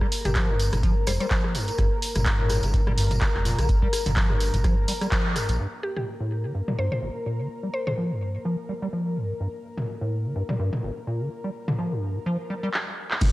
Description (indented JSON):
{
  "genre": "acid house",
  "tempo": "126 BPM",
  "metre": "4/4",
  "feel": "swing 56% on 16ths",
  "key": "G minor",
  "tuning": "A4 = 440 Hz",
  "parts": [
    { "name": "dark analog pad", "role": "sustained chords", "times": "0.0-13.3 s", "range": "G4 to Bb5", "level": "-34 LUFS", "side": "left 3 dB", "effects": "chorus, sidechain pumping" },
    { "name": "acid bass, square", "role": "riff", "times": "0.0-13.3 s", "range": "G1 to G3", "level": "-28 LUFS", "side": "equal", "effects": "overdrive, wide subtle chorus" },
    { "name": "electronic kick drum", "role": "drums", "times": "0.0-5.2, 13.2-13.3 s", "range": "none", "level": "-24 LUFS", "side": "equal", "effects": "none" },
    { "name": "punchy analog drum machine", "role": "drums", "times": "0.0-13.3 s", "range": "crash cymbal, handclaps, hi-hat, rim click, toms", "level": "-29 LUFS", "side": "equal", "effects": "low-pass filter on snare, low-pass filter on hats, low-pass filter on toms, low-pass filter on cymbals, low-pass filter on room" },
    { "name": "tambourine", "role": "percussion", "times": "0.1-5.6, 13.2-13.3 s", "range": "none", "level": "-36 LUFS", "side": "right 1 dB", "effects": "none" },
    { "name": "mallet-like synth pluck", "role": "melody", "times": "0.3-1.3, 5.8-7.9 s", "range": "G4 to C5", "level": "-33 LUFS", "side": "equal", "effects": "chorus, cassette tape, analog delay" },
    { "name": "round analog bass", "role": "bass", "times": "0.3-5.6, 13.2-13.3 s", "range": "F1 to Bb1", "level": "-26 LUFS", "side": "equal", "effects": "sidechain pumping" },
    { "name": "impact", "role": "sound effects", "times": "13.2-13.3 s", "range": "none", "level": "-27 LUFS", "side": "equal", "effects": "none" }
  ],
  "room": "light reverb, digital ambience",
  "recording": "dry, gritty hardware recording",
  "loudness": "-23 LUFS",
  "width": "side -18 dB against mid",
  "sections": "0.0-5.6 A section; 5.6-13.2 B section",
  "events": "filter sweep on acid bass 0.0-5.6, 5.6-13.2; band accent 5.1; drum fill 12.7-13.2",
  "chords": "0.0 Gm7; 5.6 Gm",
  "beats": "0.36 0.83 1.31 | 1.78 2.26 2.74 3.21 | 3.69 4.17 4.64 5.12 | 5.59 6.07 6.55 7.02 | 7.50 7.98 8.45 8.93 | 9.40 9.88 10.36 10.83 | 11.31 11.79 12.26 12.74 | 13.21"
}